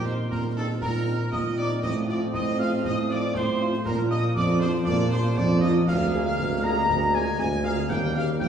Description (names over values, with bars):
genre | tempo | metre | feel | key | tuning
military-style march for wind band | 118 BPM | 2/4 | straight | Bb major | A4 = 437 Hz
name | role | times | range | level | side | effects
warm trumpet section | melody | 0.0-8.5 s | A4 to Bb5 | -31 LUFS | equal | none
mellow woodwind section | second line | 0.0-8.5 s | A4 to Bb5 | -32 LUFS | left 2 dB | none
wooden piccolo | second line | 0.0-8.5 s | A5 to Bb6 | -36 LUFS | equal | none
dark French horn section | accompaniment | 0.0-8.2 s | F3 to Ab4 | -34 LUFS | left 1 dB | none
warm trombone section | sustained chords | 0.0-8.5 s | Eb3 to D4 | -32 LUFS | right 2 dB | none
mellow tuba | bass | 0.0-8.5 s | Bb1 to Bb2 | -24 LUFS | right 1 dB | none
concert snare drum, concert bass drum and clash cymbals | drums | 0.1-8.5 s | none | -34 LUFS | equal | none
room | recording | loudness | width
wet concert hall reverb, RT60 1.8 s | heard from further back in the room, small room ambience | -22 LUFS | side -8 dB against mid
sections
0.0-8.5 A section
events
none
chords
0.0 Cm7/Bb; 1.8 F/A; 3.9 Bb; 5.9 Bb7/D; 7.9 Eb